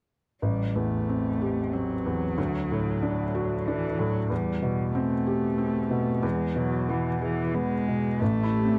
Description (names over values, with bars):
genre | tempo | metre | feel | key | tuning
neoclassical piano and strings | 93 BPM | 3/4 | rubato | A dorian | A4 = 440 Hz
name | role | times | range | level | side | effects
dark cello | second line | 0.4-8.8 s | E3 to A3 | -32 LUFS | equal | none
felt-muted upright piano | accompaniment | 0.4-8.8 s | A1 to G#4 | -29 LUFS | equal | none
dark analog pad | sustained chords | 8.2-8.8 s | A3 to G4 | -34 LUFS | equal | lush chorus
room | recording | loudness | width
moderate booth ambience, RT60 0.2 s | dry, close 1970s-style studio recording | -27 LUFS | mono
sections
0.4-8.2 A section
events
none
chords
0.4 Am7; 2.4 D; 4.3 Cmaj7/E; 6.2 E; 8.2 Am7